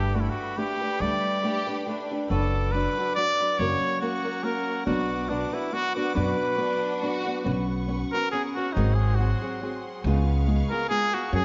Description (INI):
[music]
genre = mexican folk, mariachi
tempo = 140 BPM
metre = 3/4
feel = swing 55% on 8ths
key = B minor, B major from 7.5 s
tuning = A4 = 440 Hz
[part]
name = warm trumpet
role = melody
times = 0.0-11.4 s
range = D4 to D5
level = -30 LUFS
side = equal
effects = tape echo
[part]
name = flamenco guitar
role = accompaniment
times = 0.0-11.4 s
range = G#2 to B4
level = -32 LUFS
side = equal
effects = none
[part]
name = rich studio violin section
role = sustained chords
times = 0.0-11.4 s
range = G#4 to D6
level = -42 LUFS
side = equal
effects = none
[part]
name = upright bass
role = bass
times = 0.0-11.4 s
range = F#1 to F#2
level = -28 LUFS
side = equal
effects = none
[part]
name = rich studio violin section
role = second line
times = 1.4-2.2, 6.6-7.5 s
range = D4 to G4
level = -36 LUFS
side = equal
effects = none
[sound]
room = moderate recital hall reverb, RT60 1.5 s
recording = nothing above 7.6 kHz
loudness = -26 LUFS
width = mono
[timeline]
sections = 0.0-7.5 A section; 7.5-11.4 B section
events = none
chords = 0.0 Gadd9; 2.3 Bm/F#; 3.6 F#; 4.9 Bm; 7.5 Bsus2; 8.8 G#7; 10.0 C#7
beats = 0.14 0.57 | 1.00 1.43 1.86 | 2.30 2.73 3.16 | 3.59 4.02 4.44 | 4.87 5.30 5.73 | 6.16 6.59 7.03 | 7.46 7.90 8.33 | 8.76 9.19 9.62 | 10.05 10.47 10.90 | 11.33